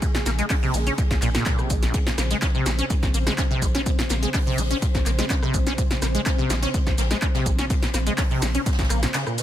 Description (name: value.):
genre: acid house.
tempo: 125 BPM.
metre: 4/4.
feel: straight.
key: Bb minor.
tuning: A4 = 439 Hz.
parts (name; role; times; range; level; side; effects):
warm analog pad; sustained chords; 0.0-9.4 s; Db3 to C5; -32 LUFS; equal; chorus, sidechain pumping.
deep acid bass; riff; 0.0-9.4 s; Bb1 to Db4; -26 LUFS; equal; tube saturation, ensemble chorus, digital delay.
electronic kick drum; drums; 0.0-8.9 s; none; -23 LUFS; equal; overdrive.
jazz brush drum kit; drums; 0.0-9.4 s; hi-hat, ride cymbal, snare drum; -36 LUFS; left 1 dB; sidechain pumping on cymbals, high-pass filter on cymbals, sidechain pumping on hats, high-pass filter on hats, high-pass filter on snare, high-pass filter on room.
punchy analog drum machine; drums; 0.0-9.4 s; handclaps, hi-hat, rim click, shaker, snare drum; -28 LUFS; equal; overdrive.
round analog bass; bass; 0.3-9.1 s; Bb1; -25 LUFS; equal; sidechain pumping.
room: studio ambience.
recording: none.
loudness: -20 LUFS.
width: side -12 dB against mid.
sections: 0.0-9.4 A section.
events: break 9.1.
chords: 0.0 Bbm7.